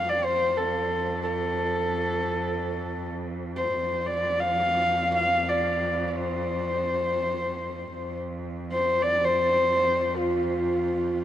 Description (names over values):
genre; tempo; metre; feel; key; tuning
mongolian traditional, Mongolian folk; free time; none; none; F gong mode; A4 = 440 Hz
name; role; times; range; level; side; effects
warm horsehead fiddle; melody; 0.0-11.2 s; F4 to F5; -24 LUFS; left 1 dB; none
clear cello; drone; 0.0-11.2 s; F2; -32 LUFS; right 1 dB; none
room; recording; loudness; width
moderate huge ambient reverb, RT60 4.0 s; dark, warm production; -24 LUFS; side -11 dB against mid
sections
0.0-11.2 A section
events
none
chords
none